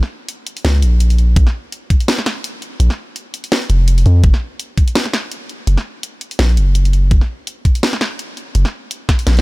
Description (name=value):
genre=half-time drum and bass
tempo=167 BPM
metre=4/4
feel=swing 56% on 16ths, half-time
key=unclear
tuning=A4 = 441 Hz
part: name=drum and bass drum kit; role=drums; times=0.0-9.4 s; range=hi-hat, snare drum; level=-20 LUFS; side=equal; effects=studio reverb
part: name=long sustained 808-style bass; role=bass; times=0.6-9.4 s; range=F1 to F2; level=-11 LUFS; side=equal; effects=none
part: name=electronic kick drum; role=drums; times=1.4-2.0, 4.2-4.9, 7.1-9.2 s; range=none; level=-12 LUFS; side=equal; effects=studio reverb
room=little or no reverb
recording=none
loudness=-13 LUFS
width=side -22 dB against mid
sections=0.0-9.4 A section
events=none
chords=none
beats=0.29 0.65 1.00 | 1.36 1.72 2.08 2.44 | 2.80 3.16 3.52 3.88 | 4.24 4.60 4.96 5.32 | 5.68 6.04 6.39 6.75 | 7.11 7.47 7.83 8.19 | 8.55 8.91 9.27